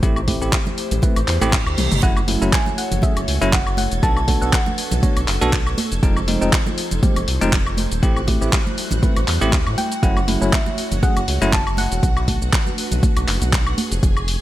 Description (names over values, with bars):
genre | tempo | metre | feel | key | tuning
deep house | 120 BPM | 4/4 | swing 55% on 16ths | F# minor | A4 = 440 Hz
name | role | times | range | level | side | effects
airy breathy pad | sustained chords | 0.0-14.0 s | F3 to C#5 | -31 LUFS | equal | chorus, sidechain pumping
bell-like tine electric piano | stabs | 0.0-11.6 s | F3 to C#5 | -24 LUFS | equal | fast stereo tremolo, sidechain pumping, dub echo
round analog bass | bass | 0.0-14.4 s | Eb1 to A2 | -22 LUFS | equal | sidechain pumping
deep house drum kit | drums | 0.0-14.4 s | handclaps, hi-hat, shaker, toms, woodblock | -24 LUFS | left 1 dB | overdrive
electronic kick drum | drums | 0.0-14.1 s | none | -19 LUFS | equal | overdrive
congas | percussion | 0.3-13.9 s | none | -28 LUFS | right 3 dB | none
reverse cymbal | sound effects | 1.4-2.0 s | none | -28 LUFS | right 6 dB | none
soft round pluck | melody | 2.0-5.7, 9.8-12.5 s | E5 to A5 | -27 LUFS | equal | chorus, cassette tape, digital delay
string machine, violins | texture | 2.0-14.4 s | F#4 to G#6 | -33 LUFS | equal | ensemble chorus
room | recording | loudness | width
little or no reverb | none | -16 LUFS | side -14 dB against mid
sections
0.0-14.4 A section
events
reverse cymbal 1.4-2.0; drum fill 1.8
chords
0.0 Am7; 2.0 F#m7; 4.0 Bm7; 5.8 Fm7; 8.0 Am7; 10.0 F#m7; 12.0 Bm7; 13.8 Fm7